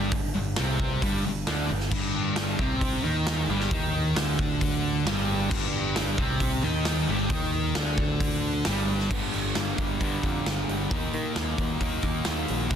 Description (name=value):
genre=quiet-loud alternative rock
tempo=134 BPM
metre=4/4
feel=straight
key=G minor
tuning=A4 = 441 Hz
part: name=thick fuzz guitar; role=riff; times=0.0-12.8 s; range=G2 to Eb4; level=-27 LUFS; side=equal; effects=distortion
part: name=modern bright picked electric bass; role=bass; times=0.0-12.8 s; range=G1 to Eb3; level=-31 LUFS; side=equal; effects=none
part: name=big rock drum kit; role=drums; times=0.1-12.8 s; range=crash cymbal, hi-hat, kick drum, snare drum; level=-29 LUFS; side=equal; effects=none
part: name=twangy electric guitar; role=arpeggios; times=9.1-12.8 s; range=G2 to Bb3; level=-37 LUFS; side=equal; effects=wide subtle chorus
room=studio ambience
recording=dense, heavily limited modern master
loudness=-24 LUFS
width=side -8 dB against mid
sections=0.0-9.1 A section; 9.1-12.8 B section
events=none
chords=0.0 G5; 9.1 Gm; 10.9 Ebm